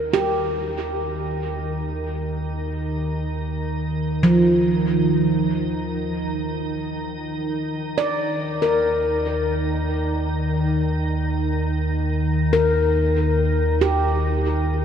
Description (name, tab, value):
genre	ambient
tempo	free time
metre	none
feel	none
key	Eb major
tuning	A4 = 439 Hz
part	handpan	arpeggios	0.0-14.8 s	F3 to D5	-22 LUFS	equal	diffuse ambient delay
part	deep rumbling drone	bass	0.0-14.8 s	Eb2	-26 LUFS	equal	built-in reverb, phaser
part	organ-like drone	drone	0.0-14.8 s	Eb3 to Eb4	-25 LUFS	equal	ensemble chorus, built-in reverb
room	wet huge ambient reverb, RT60 8.4 s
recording	none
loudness	-20 LUFS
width	side -8 dB against mid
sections	0.0-14.8 A section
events	fade-in on synth drone 0.0-14.8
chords	0.0 Eb